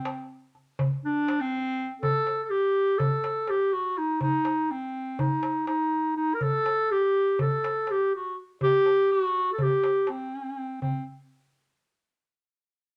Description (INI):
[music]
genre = Turkish makam ensemble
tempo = 245 BPM (eighths)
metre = 9/8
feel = straight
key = C makam nikriz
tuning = A4 = 440 Hz
[part]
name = warm clarinet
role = melody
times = 0.0-11.0 s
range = C4 to Bb4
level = -27 LUFS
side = equal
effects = none
[part]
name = darbuka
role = percussion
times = 0.1-11.1 s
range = none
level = -32 LUFS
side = equal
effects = none
[sound]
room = moderate studio reverb, RT60 0.7 s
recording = none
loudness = -26 LUFS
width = mono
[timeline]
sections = 0.0-2.0 A section; 2.0-10.8 B section; 10.8-13.0 C section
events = none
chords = none